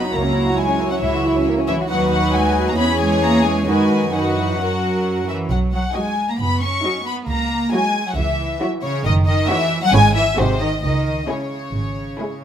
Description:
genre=quick classical-period movement for string orchestra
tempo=135 BPM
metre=4/4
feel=straight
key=C# minor from 9.1 s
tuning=A4 = 440 Hz
part: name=warm symphonic violin section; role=melody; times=0.0-12.4 s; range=B#4 to C#6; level=-22 LUFS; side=left 4 dB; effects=none
part: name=warm symphonic violin section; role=second line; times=0.0-12.4 s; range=A#3 to D#5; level=-23 LUFS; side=left 3 dB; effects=none
part: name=dark studio viola section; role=accompaniment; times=0.0-12.4 s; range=D#3 to E4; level=-23 LUFS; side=right 2 dB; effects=none
part: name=dark symphonic double bass section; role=bass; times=0.1-12.1 s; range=F#1 to F#2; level=-22 LUFS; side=right 2 dB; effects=none
part: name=rich symphonic cello section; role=bass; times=0.1-12.4 s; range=B#2 to C#4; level=-23 LUFS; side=right 2 dB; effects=none
room=light reverb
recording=close, detailed microphones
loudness=-16 LUFS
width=side -9 dB against mid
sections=0.0-12.4 A section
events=none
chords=0.1 F#7/C#; 1.9 B/D#; 2.8 C#m7/E; 3.7 B/F#; 4.6 F#; 5.5 B; 7.3 F#7/C#; 9.1 D#m7b5/F#; 9.9 C#m/G#; 10.4 G#7; 10.8 C#m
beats=| 0.14 0.58 1.02 1.46 | 1.91 2.35 2.79 3.23 | 3.68 4.14 4.59 5.05 | 5.50 5.95 6.40 6.85 | 7.29 7.74 8.18 8.62 | 9.05 9.49 9.94 10.38 | 10.83 11.29 11.75 12.21

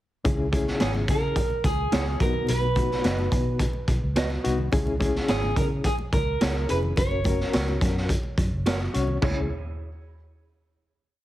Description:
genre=uptempo 1960s-style soul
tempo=107 BPM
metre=4/4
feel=straight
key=C# dorian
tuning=A4 = 440 Hz
part: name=barky reed electric piano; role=accompaniment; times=0.2-9.5 s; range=C#2 to C#5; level=-29 LUFS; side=left 3 dB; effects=overdrive, fast tremolo
part: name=raw garage drum kit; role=drums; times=0.2-9.4 s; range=crash cymbal, hi-hat, kick drum, snare drum, toms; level=-26 LUFS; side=equal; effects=none
part: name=congas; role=percussion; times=0.2-9.5 s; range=none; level=-38 LUFS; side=equal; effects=none
part: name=vintage muted fingered electric bass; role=bass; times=0.3-9.5 s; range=E#1 to C#3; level=-28 LUFS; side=equal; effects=none
part: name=electric guitar through a small old amp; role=melody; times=0.8-8.6 s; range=G#4 to C#5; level=-29 LUFS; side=right 2 dB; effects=none
part: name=mellow electric guitar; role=stabs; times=0.8-9.4 s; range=E4 to D#5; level=-34 LUFS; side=right 5 dB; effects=spring reverb
room=light reverb, studio ambience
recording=heavily compressed radio sound, multiband compression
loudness=-22 LUFS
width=side -14 dB against mid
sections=0.3-9.2 verse; 9.2-11.2 final chord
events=none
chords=0.3 C#m; 2.2 B; 4.7 C#m; 7.0 F#; 9.2 C#m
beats=| 0.25 0.81 1.37 1.93 | 2.49 3.05 3.61 4.17 | 4.73 5.29 5.85 6.41 | 6.97 7.54 8.10 8.66 | 9.22

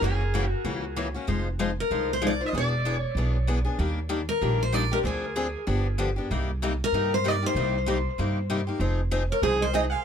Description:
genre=acoustic string swing (jazz manouche)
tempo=191 BPM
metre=4/4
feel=swing 58% on 8ths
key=C minor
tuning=A4 = 438 Hz
part: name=picked steel-string acoustic guitar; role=melody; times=0.0-10.0 s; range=G#4 to F5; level=-28 LUFS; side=equal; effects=tape echo
part: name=picked steel-string acoustic guitar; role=accompaniment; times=0.0-9.8 s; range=C3 to C5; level=-29 LUFS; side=left 3 dB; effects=none
part: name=upright bass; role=bass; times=0.0-9.9 s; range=E1 to G2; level=-28 LUFS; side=right 1 dB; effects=none
part: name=breathy bright long shakuhachi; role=second line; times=9.3-10.0 s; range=C5 to Ab5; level=-30 LUFS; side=right 8 dB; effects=none
room=little or no reverb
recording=close, detailed microphones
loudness=-24 LUFS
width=side -8 dB against mid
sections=0.0-8.8 A section; 8.8-10.0 B section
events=none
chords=0.0 F#9; 1.3 Fm7; 2.5 E7; 3.8 Ebmaj7; 5.0 Dm7b5; 5.7 G7; 6.3 Cm7; 8.8 Fm7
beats=| 0.02 0.33 0.65 0.96 | 1.27 1.59 1.90 2.22 | 2.53 2.84 3.16 3.47 | 3.79 4.10 4.41 4.73 | 5.04 5.35 5.67 5.98 | 6.29 6.61 6.92 7.23 | 7.55 7.86 8.18 8.49 | 8.80 9.11 9.43 9.74

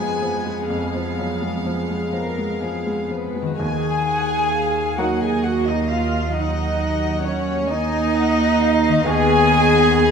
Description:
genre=cinematic, emotional film score for orchestra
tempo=40-45 BPM (dotted quarters)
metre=6/8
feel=rubato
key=Eb minor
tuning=A4 = 441 Hz
part: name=warm symphonic violin section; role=melody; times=0.0-10.1 s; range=Eb5 to Ab5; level=-31 LUFS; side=left 4 dB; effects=none
part: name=warm studio violin section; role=second line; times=0.0-10.1 s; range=Ab4 to Ab5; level=-27 LUFS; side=left 5 dB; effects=none
part: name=clear baby grand piano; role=accompaniment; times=0.0-10.1 s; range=Eb2 to Bb4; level=-28 LUFS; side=equal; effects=none
part: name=warm studio viola section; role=accompaniment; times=0.0-10.1 s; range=Ab3 to Ab4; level=-22 LUFS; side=right 2 dB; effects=none
part: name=concert harp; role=arpeggios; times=0.0-10.1 s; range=F2 to B4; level=-27 LUFS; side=left 7 dB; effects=none
part: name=dark studio cello section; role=bass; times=0.0-10.1 s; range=F2 to B3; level=-25 LUFS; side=right 3 dB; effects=none
part: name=bright silver concert flute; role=second line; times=3.6-10.1 s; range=Db5 to Ab5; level=-24 LUFS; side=equal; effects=none
part: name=dark studio double bass section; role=bass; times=3.6-10.1 s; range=Eb2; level=-27 LUFS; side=right 3 dB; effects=none
room=moderate scoring stage reverb, RT60 1.9 s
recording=none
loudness=-18 LUFS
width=side -6 dB against mid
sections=0.0-3.6 A section; 3.6-10.1 A section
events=none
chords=0.0 Fdim; 3.6 Ebm; 9.1 B/D#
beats=| 0.70 2.15 | 3.60 4.99 | 6.34 7.69 | 9.07

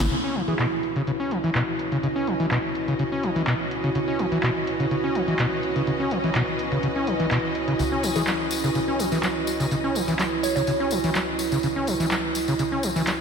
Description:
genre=acid house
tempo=125 BPM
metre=4/4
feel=straight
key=C# minor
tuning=A4 = 438 Hz
part: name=warbly tape-like pad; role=sustained chords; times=0.0-13.2 s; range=E4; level=-28 LUFS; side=right 3 dB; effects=chorus, built-in reverb
part: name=overdriven acid bass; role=riff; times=0.0-13.1 s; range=B2 to C#4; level=-25 LUFS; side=left 1 dB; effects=distortion, tube saturation, tape echo
part: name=round analog bass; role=bass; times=0.0-13.2 s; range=C#2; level=-39 LUFS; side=equal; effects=tube saturation
part: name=punchy analog drum machine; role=drums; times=0.0-13.2 s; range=handclaps, hi-hat, snare drum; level=-30 LUFS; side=equal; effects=low-pass filter on hats, low-pass filter on snare
part: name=tambourine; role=percussion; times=0.0-0.1, 7.8-13.2 s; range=none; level=-34 LUFS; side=left 4 dB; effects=none
part: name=dark studio string section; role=texture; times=0.1-13.2 s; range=C#4 to D#5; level=-30 LUFS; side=right 1 dB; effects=none
part: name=glassy wavetable pluck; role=melody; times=0.5-1.0, 8.2-10.6 s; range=G#4 to C#5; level=-33 LUFS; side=right 1 dB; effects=chorus, diffuse ambient delay
room=wet lush hall reverb, RT60 2.3 s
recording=dreamy mix soaked in reverb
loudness=-22 LUFS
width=side -6 dB against mid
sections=0.1-13.2 A section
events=band accent 0.0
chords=0.1 C#m7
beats=| 0.11 0.59 1.07 1.55 | 2.03 2.51 2.99 3.47 | 3.95 4.43 4.91 5.39 | 5.87 6.35 6.83 7.31 | 7.79 8.27 8.75 9.23 | 9.71 10.19 10.67 11.15 | 11.63 12.11 12.59 13.07

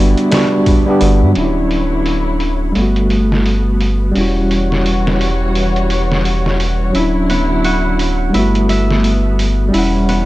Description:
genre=trip hop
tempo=86 BPM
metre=4/4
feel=swing 59% on 16ths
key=unclear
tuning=A4 = 439 Hz
part: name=felt-muted upright piano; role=melody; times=0.0-1.0 s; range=D5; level=-33 LUFS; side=right 1 dB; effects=none
part: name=tine electric piano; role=accompaniment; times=0.0-10.3 s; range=F#3 to F#5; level=-16 LUFS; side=equal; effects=tremolo, low-pass filter, tape echo
part: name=muted studio string section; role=sustained chords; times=0.0-10.3 s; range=D3 to F#5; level=-22 LUFS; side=left 1 dB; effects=low-pass filter
part: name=warm sub bass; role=bass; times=0.0-10.3 s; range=D1 to G2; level=-16 LUFS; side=equal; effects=tube saturation
part: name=bowed-like drone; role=texture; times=0.0-1.4 s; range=B3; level=-28 LUFS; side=right 4 dB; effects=none
part: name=trip hop sampler-style drum kit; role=drums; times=0.2-10.3 s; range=hi-hat, kick drum, snare drum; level=-21 LUFS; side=equal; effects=low-pass filter on kick, studio reverb, low-pass filter on hats, low-pass filter on snare
part: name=concert harp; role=arpeggios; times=7.0-10.3 s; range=B3 to E5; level=-20 LUFS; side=right 2 dB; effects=tape echo
room=small room ambience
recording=dark, warm production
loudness=-12 LUFS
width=side -17 dB against mid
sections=0.0-1.4 A section; 1.4-10.3 B section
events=filter sweep on tine electric piano 0.0-1.4, 1.4-10.3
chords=0.0 Gmaj7; 1.4 Dmaj9; 2.8 Gmaj9; 4.2 Em69; 7.0 Dmaj9; 8.3 Gmaj9; 9.7 Em69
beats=0.67 | 1.37 2.07 2.76 3.46 | 4.16 4.86 5.55 6.25 | 6.95 7.65 8.35 9.04 | 9.74

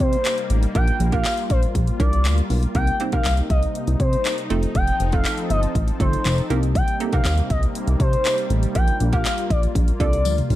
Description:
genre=dance-pop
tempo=120 BPM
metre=4/4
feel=straight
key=C dorian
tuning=A4 = 439 Hz
part: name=expressive portamento lead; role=melody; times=0.0-10.4 s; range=C5 to G5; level=-25 LUFS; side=left 1 dB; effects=chorus, sidechain pumping, digital delay
part: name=sweeping resonant pad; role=sustained chords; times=0.0-10.6 s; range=C3 to A4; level=-30 LUFS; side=left 1 dB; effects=chorus, sidechain pumping
part: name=chorused synth bass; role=bass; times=0.0-10.6 s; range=F1 to C3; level=-20 LUFS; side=equal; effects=sidechain pumping
part: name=pop drum kit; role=drums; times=0.0-10.6 s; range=handclaps, hi-hat, kick drum, toms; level=-22 LUFS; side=equal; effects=none
part: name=tambourine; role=percussion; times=0.3-10.4 s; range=none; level=-36 LUFS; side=left 11 dB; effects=none
part: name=hollow square pluck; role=accompaniment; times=0.8-10.6 s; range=A3 to C5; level=-29 LUFS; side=right 6 dB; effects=chorus, sidechain pumping
room=digital ambience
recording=dark, warm production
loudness=-18 LUFS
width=side -14 dB against mid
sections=0.0-10.6 A section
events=drum fill 10.3-10.6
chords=0.0 Cm7; 0.8 Gm7/Bb; 2.8 Cm7; 4.5 F7; 6.5 Cm7; 8.8 Gm7/Bb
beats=0.25 | 0.75 1.25 1.75 2.25 | 2.75 3.25 3.75 4.25 | 4.75 5.25 5.75 6.25 | 6.75 7.25 7.75 8.25 | 8.75 9.25 9.75 10.25

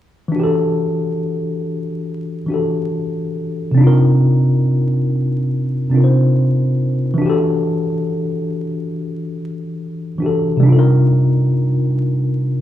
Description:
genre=hip hop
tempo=70 BPM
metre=4/4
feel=swing 59% on 16ths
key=E minor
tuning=A4 = 440 Hz
part: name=tine electric piano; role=accompaniment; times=0.3-12.6 s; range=C3 to C5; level=-15 LUFS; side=equal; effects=medium stereo tremolo, cassette tape
room=wet studio reverb, RT60 0.5 s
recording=vinyl crackle, studio ambience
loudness=-14 LUFS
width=side -12 dB against mid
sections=0.3-12.6 A section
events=none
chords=0.3 Em11; 3.8 Cm11; 7.2 Em11; 10.6 Cm11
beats=| 0.35 1.20 2.06 2.92 | 3.77 4.63 5.49 6.35 | 7.20 8.06 8.92 9.77 | 10.63 11.49 12.35

